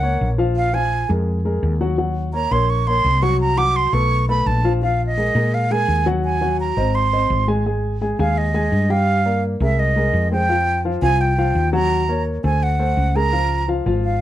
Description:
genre	Afro-Cuban jazz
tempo	169 BPM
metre	4/4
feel	straight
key	Ab major from 7.7 s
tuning	A4 = 440 Hz
part	breathy concert flute	melody	0.0-14.2 s	Eb5 to D6	-20 LUFS	right 3 dB	none
part	dark concert grand piano	accompaniment	0.0-14.2 s	F3 to Ab5	-22 LUFS	left 2 dB	none
part	woody fretless electric bass	bass	0.0-14.2 s	Ab1 to Bb2	-20 LUFS	equal	none
room	light reverb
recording	dark, warm production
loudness	-16 LUFS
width	side -12 dB against mid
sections	0.0-7.7 A section; 7.7-14.2 B section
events	flute solo 7.7-14.2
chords	0.0 Gbmaj7; 0.6 Bb5; 2.0 Ebm7; 3.4 Cbm9; 4.1 Dbaug7; 4.8 Bb5; 6.2 Ebm; 6.9 Ab; 7.7 Ab5; 9.1 Gm7; 9.8 Abmaj13/C; 10.5 Fsus2; 11.9 Ebm7; 12.6 D7#11; 13.3 Db6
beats	0.21 | 0.56 0.92 1.27 1.63 | 1.98 2.34 2.69 3.05 | 3.40 3.76 4.11 4.46 | 4.82 5.17 5.53 5.88 | 6.24 6.59 6.95 7.30 | 7.66 8.01 8.37 8.72 | 9.07 9.43 9.78 10.14 | 10.49 10.85 11.20 11.55 | 11.91 12.26 12.62 12.97 | 13.33 13.68 14.04

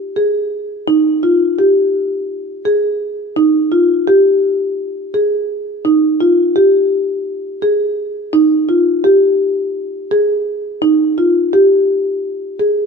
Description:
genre	progressive instrumental, progressive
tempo	169 BPM (eighths)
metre	7/8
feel	straight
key	unclear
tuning	A4 = 440 Hz
part	marimba with soft mallets	solo	0.2-12.9 s	Eb4 to Ab4	-12 LUFS	equal	none
room	moderate plate reverb, RT60 2.2 s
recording	none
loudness	-12 LUFS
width	side -5 dB against mid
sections	0.9-12.9 A section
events	none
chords	none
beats	0.16 0.52 | 0.87 1.23 1.58 1.94 2.29 2.65 3.01 | 3.36 3.72 4.07 4.43 4.78 5.14 5.50 | 5.85 6.21 6.56 6.92 7.27 7.63 7.98 | 8.34 8.69 9.05 9.40 9.76 10.11 10.47 | 10.82 11.18 11.53 11.88 12.24 12.60

